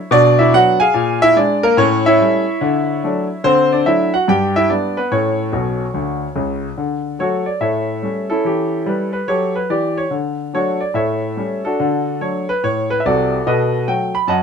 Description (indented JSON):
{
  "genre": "jazz, stride piano",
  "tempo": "144 BPM",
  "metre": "4/4",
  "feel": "swing 65% on 8ths",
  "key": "D major",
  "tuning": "A4 = 440 Hz",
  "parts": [
    { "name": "clear grand piano", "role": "solo", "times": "0.0-14.4 s", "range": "B1 to B5", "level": "-14 LUFS", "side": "equal", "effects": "none" }
  ],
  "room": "light reverb",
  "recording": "close, detailed microphones",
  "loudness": "-14 LUFS",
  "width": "side -6 dB against mid",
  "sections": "0.0-6.8 A section; 6.8-14.4 B section",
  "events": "grand piano fill 5.5-6.8",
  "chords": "0.1 Bm; 0.9 Bb7; 1.8 A7; 2.6 D; 3.4 D7; 4.3 G; 5.1 A; 6.8 D; 7.6 A7; 8.4 A7/E; 10.1 D; 10.9 A7; 11.8 D; 13.5 B7",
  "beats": "| 0.10 0.52 0.94 1.35 | 1.77 2.19 2.60 3.02 | 3.44 3.85 4.27 4.69 | 5.10 5.52 5.94 6.35 | 6.77 7.19 7.61 8.03 | 8.44 8.86 9.28 9.70 | 10.11 10.53 10.95 11.37 | 11.79 12.20 12.62 13.04 | 13.46 13.87 14.29"
}